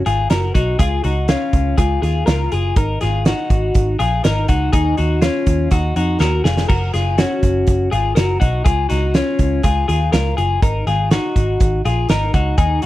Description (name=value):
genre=jangly indie pop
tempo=122 BPM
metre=4/4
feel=straight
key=unclear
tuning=A4 = 438 Hz
part: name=twelve-string electric guitar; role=arpeggios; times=0.1-12.9 s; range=C#4 to A#4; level=-19 LUFS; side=left 3 dB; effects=none
part: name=vintage muted picked electric bass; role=bass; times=0.1-12.8 s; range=E#1 to E#2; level=-18 LUFS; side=right 1 dB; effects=none
part: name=loose indie drum kit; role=drums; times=0.1-12.9 s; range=crash cymbal, hi-hat, kick drum, snare drum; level=-18 LUFS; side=right 1 dB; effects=none
room=little or no reverb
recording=none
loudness=-14 LUFS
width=side -15 dB against mid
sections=0.0-12.9 A section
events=drum fill 6.2-6.7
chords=0.0 F#; 0.8 C#add9; 2.8 G#sus2; 4.7 D#m7; 6.7 F#; 8.7 C#add9; 10.6 G#sus2